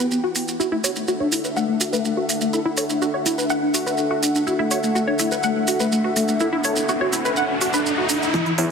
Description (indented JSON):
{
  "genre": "melodic techno",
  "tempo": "124 BPM",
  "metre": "4/4",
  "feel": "straight",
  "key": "unclear",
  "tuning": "A4 = 441 Hz",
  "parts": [
    { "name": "mellow synth brass", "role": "melody", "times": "0.0-8.6 s", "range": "E3 to A4", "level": "-24 LUFS", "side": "equal", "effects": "chorus, sidechain pumping, tape echo" },
    { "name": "dark analog pad", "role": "sustained chords", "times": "0.0-8.7 s", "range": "G3 to G5", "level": "-27 LUFS", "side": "left 2 dB", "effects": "chorus, sidechain pumping" },
    { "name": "tight sequenced synth", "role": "arpeggios", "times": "0.0-8.7 s", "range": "E4 to F#5", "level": "-25 LUFS", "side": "equal", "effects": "chorus, phaser, sidechain pumping, ping-pong delay" },
    { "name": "warbly tape-like pad", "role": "texture", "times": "0.0-8.7 s", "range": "D4 to F#5", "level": "-30 LUFS", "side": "left 1 dB", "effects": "chorus, built-in reverb, sidechain pumping" },
    { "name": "maracas", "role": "percussion", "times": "0.1-8.3 s", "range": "none", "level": "-28 LUFS", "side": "right 4 dB", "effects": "none" },
    { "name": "electronic hi-hat", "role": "drums", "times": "0.4-8.7 s", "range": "none", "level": "-27 LUFS", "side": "right 1 dB", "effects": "sidechain pumping on hats" },
    { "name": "riser", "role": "sound effects", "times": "5.6-8.7 s", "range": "none", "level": "-26 LUFS", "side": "left 1 dB", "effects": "none" },
    { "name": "electronic kick drum", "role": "drums", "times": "8.3-8.4 s", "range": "none", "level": "-29 LUFS", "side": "equal", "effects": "high-pass filter on kick, high-pass filter on room" },
    { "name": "fat analog bass", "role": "bass", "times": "8.6-8.7 s", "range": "E2", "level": "-24 LUFS", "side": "equal", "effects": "sidechain pumping, high-pass filter" }
  ],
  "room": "moderate lush hall reverb, RT60 2.8 s",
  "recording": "heavily compressed radio sound",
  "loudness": "-19 LUFS",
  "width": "side -6 dB against mid",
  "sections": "0.0-8.3 A section",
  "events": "filter sweep on synth arpeggio sound 0.0-8.3; filter sweep on analog polysynth 0.0-8.3; riser 5.6-8.3, 8.3-8.7",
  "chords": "0.0 Emadd9; 0.6 D"
}